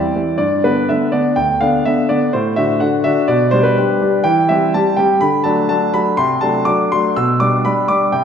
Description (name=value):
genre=classical-period piano sonatina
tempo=124 BPM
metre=4/4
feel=rubato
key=G major from 4.2 s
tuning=A4 = 440 Hz
part: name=clear concert grand piano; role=solo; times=0.0-8.2 s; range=D2 to E6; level=-13 LUFS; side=equal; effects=none
room=wet recital hall reverb, RT60 1.3 s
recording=heard from further back in the room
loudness=-13 LUFS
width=side -7 dB against mid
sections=0.0-8.2 A section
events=none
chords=0.4 G; 2.3 D/A; 3.3 G/B; 4.2 C/E; 5.2 D; 6.2 D7/C; 7.2 G/B